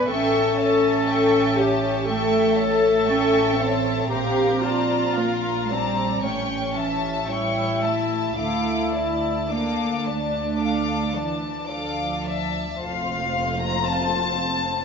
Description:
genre	classical, slow romantic movement for string orchestra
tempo	53-61 BPM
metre	4/4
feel	rubato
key	D minor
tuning	A4 = 442 Hz
part	clear studio violin section	melody	0.0-14.8 s	E5 to D6	-29 LUFS	left 5 dB	none
part	dark studio violin section	second line	0.0-14.8 s	F4 to Bb5	-27 LUFS	left 2 dB	none
part	dark studio viola section	accompaniment	0.0-14.8 s	A3 to A4	-24 LUFS	left 2 dB	none
part	warm studio cello section	bass	0.0-14.8 s	F2 to C#4	-27 LUFS	right 3 dB	none
part	warm studio double bass section	bass	0.0-14.8 s	F1 to D2	-31 LUFS	right 6 dB	none
room	moderate scoring stage reverb, RT60 1.5 s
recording	nothing above 7.6 kHz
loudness	-20 LUFS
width	side -6 dB against mid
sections	0.0-12.8 A section; 12.8-14.8 B section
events	none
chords	0.1 A7; 4.1 Bbmaj7; 6.2 A7; 8.4 Dm; 12.8 F

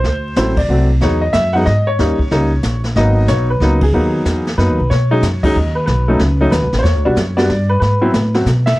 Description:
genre	jazz piano trio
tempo	185 BPM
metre	3/4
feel	swing 64% on 8ths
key	G# minor, B major from 4.9 s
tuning	A4 = 441 Hz
part	warm upright piano	melody	0.0-8.8 s	F#3 to F#5	-16 LUFS	equal	none
part	upright bass	bass	0.0-8.8 s	G#1 to B2	-15 LUFS	equal	none
part	jazz brush drum kit	drums	0.0-8.8 s	brushed snare drum, crash cymbal, hi-hat, kick drum, ride cymbal, snare drum	-22 LUFS	equal	vintage 12-bit sampler grit
room	little or no reverb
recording	dry, gritty hardware recording, vinyl crackle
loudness	-12 LUFS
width	side -18 dB against mid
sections	0.0-4.9 A section; 4.9-8.8 B section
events	band accent 0.5, 3.8, 5.4, 8.6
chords	0.0 D7; 1.0 Emaj9; 2.0 D#7; 3.0 G#m7; 4.9 B69; 5.9 B7; 6.8 Em9; 7.8 G#7alt

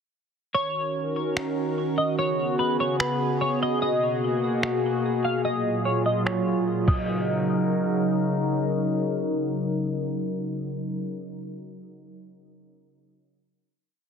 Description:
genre	hip hop, atmospheric cloud-rap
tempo	147 BPM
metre	4/4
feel	half-time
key	Eb minor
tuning	A4 = 440 Hz
part	semi-hollow electric guitar	melody	0.5-8.3 s	Cb5 to F5	-28 LUFS	equal	analog chorus, low-pass filter, ping-pong delay
part	warbly tape-like pad	sustained chords	0.7-11.1 s	Bb2 to Bb4	-25 LUFS	equal	chorus, built-in reverb, sidechain pumping
part	lo-fi sampler-style drum kit	drums	1.4-7.0 s	crash cymbal, finger snaps, kick drum	-26 LUFS	equal	soft clipping on snare
room	light reverb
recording	dense, heavily limited modern master, low-pass filter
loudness	-23 LUFS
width	side -6 dB against mid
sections	0.6-7.1 breakdown; 7.1-10.3 final hit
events	filter sweep 0.6-7.1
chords	0.6 Ebm7; 2.2 Db7sus4; 3.8 Abm9; 5.4 Gbmaj9; 6.9 Ebm7

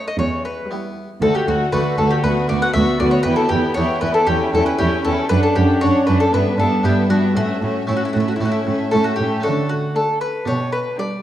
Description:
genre	classical, baroque-style concerto movement with solo episodes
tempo	117 BPM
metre	4/4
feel	straight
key	D major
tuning	A4 = 440 Hz
part	mandolin	melody	0.0-11.2 s	E4 to F#5	-20 LUFS	left 2 dB	none
part	warm chamber violin section	melody	0.0-11.2 s	E5 to G5	-32 LUFS	left 3 dB	none
part	warm studio violin section	second line	0.0-11.2 s	C#4 to F#4	-25 LUFS	left 2 dB	none
part	harpsichord	accompaniment	0.0-11.2 s	D2 to G4	-24 LUFS	equal	none
part	warm chamber viola section	accompaniment	0.0-11.2 s	G3 to D4	-23 LUFS	right 2 dB	none
part	warm chamber cello section	bass	0.2-10.9 s	D2 to D3	-21 LUFS	right 2 dB	none
room	wet recital hall reverb, RT60 1.7 s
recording	dark, warm production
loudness	-16 LUFS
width	side -12 dB against mid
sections	0.0-9.4 A section; 9.4-11.2 A section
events	none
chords	0.2 Em; 1.2 D; 2.2 Bm/D; 3.3 Em; 4.3 C#dim/E; 5.3 D/F#; 6.3 Em7/G; 7.4 A; 9.4 D; 10.5 G/B

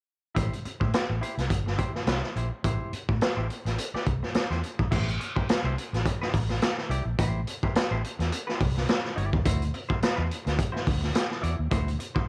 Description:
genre	funk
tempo	106 BPM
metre	4/4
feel	swing 56% on 16ths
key	A dorian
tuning	A4 = 440 Hz
part	semi-hollow electric guitar	accompaniment	0.3-12.3 s	E4 to D5	-40 LUFS	equal	none
part	vintage muted fingered electric bass	bass	0.4-12.2 s	G1 to A2	-31 LUFS	equal	none
part	raw garage drum kit	drums	0.4-12.3 s	crash cymbal, hi-hat, kick drum, snare drum	-30 LUFS	equal	none
room	light reverb, small room reverb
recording	home recording on cassette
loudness	-28 LUFS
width	mono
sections	0.4-4.9 A section; 4.9-12.3 B section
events	none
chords	0.4 Am7; 9.5 D9

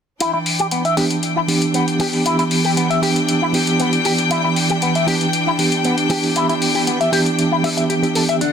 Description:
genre	nu-disco, nu disco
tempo	117 BPM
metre	4/4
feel	straight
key	E minor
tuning	A4 = 442 Hz
part	bright symphonic string section	sustained chords	0.2-8.5 s	D3 to G5	-21 LUFS	equal	none
part	electric guitar with an envelope filter	riff	0.2-8.5 s	B3 to E5	-21 LUFS	left 2 dB	analog chorus, low-pass filter, tape echo
part	electronic hi-hat	drums	0.2-8.5 s	none	-23 LUFS	left 3 dB	studio ambience
part	reed electric piano	accompaniment	1.0-8.4 s	E3 to G4	-19 LUFS	right 2 dB	fast tremolo, tape echo
room	moderate lush hall reverb, RT60 2.0 s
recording	dense, heavily limited modern master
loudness	-15 LUFS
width	side -7 dB against mid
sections	0.2-8.5 A section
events	none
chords	0.2 Em7

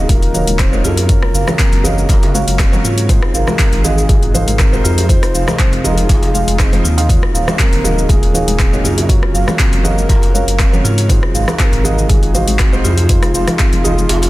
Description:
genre	afro house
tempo	120 BPM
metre	4/4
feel	swing 53% on 16ths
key	unclear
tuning	A4 = 440 Hz
part	breathy bass bansuri	melody	0.0-14.3 s	F4 to C5	-24 LUFS	left 2 dB	dub echo
part	warm analog pad	sustained chords	0.0-14.3 s	C3 to Bb4	-25 LUFS	left 1 dB	chorus, sidechain pumping
part	felt-muted upright piano	stabs	0.0-14.3 s	Db4 to F5	-24 LUFS	right 2 dB	sidechain pumping, dub echo
part	dark detuned saw bass	bass	0.0-14.3 s	Eb1 to Ab2	-16 LUFS	equal	sidechain pumping
part	marimba with medium mallets	arpeggios	0.1-14.2 s	C4 to F5	-22 LUFS	right 3 dB	sidechain pumping, dub echo
part	afro-pop drum kit	drums	0.1-14.3 s	handclaps, hi-hat, rim click, shaker	-20 LUFS	left 1 dB	none
part	electronic kick drum	drums	0.1-13.7 s	none	-13 LUFS	equal	none
part	congas	percussion	0.1-14.2 s	none	-24 LUFS	left 2 dB	none
part	djembe	percussion	0.1-14.3 s	none	-25 LUFS	right 1 dB	none
room	little or no reverb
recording	dense, heavily limited modern master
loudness	-10 LUFS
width	side -17 dB against mid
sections	0.0-14.3 A section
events	kick drops out 14.1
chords	0.0 Ebm7; 1.1 Gb; 3.1 Ab7; 5.1 Fm7; 7.1 Ebm7; 9.1 Gb; 11.1 Ab7; 13.1 Fm7

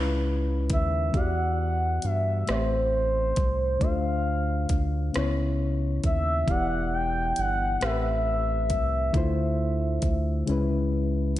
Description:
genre	slow six-eight R&B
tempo	45 BPM (dotted quarters)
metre	6/8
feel	straight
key	unclear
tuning	A4 = 440 Hz
part	reed electric piano	accompaniment	0.0-11.4 s	A2 to D5	-29 LUFS	left 3 dB	none
part	round analog bass	bass	0.0-11.4 s	E1 to G2	-27 LUFS	equal	none
part	gliding portamento lead	melody	0.7-11.4 s	C5 to G5	-28 LUFS	equal	chorus, tape echo
part	smooth R&B drum kit	drums	0.7-11.4 s	hi-hat, kick drum, rim click	-29 LUFS	equal	none
room	moderate lush hall reverb, RT60 2.1 s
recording	dreamy mix soaked in reverb, nothing above 10.3 kHz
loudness	-23 LUFS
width	side -14 dB against mid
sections	0.0-1.1 A section; 1.1-11.4 B section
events	drum fill 10.5-11.4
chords	0.0 C#m9; 1.1 Em9; 2.5 Am7; 3.8 Dm7; 5.1 C#m9; 6.5 Em7; 7.8 Am9; 9.1 Dm9; 10.5 C#m7

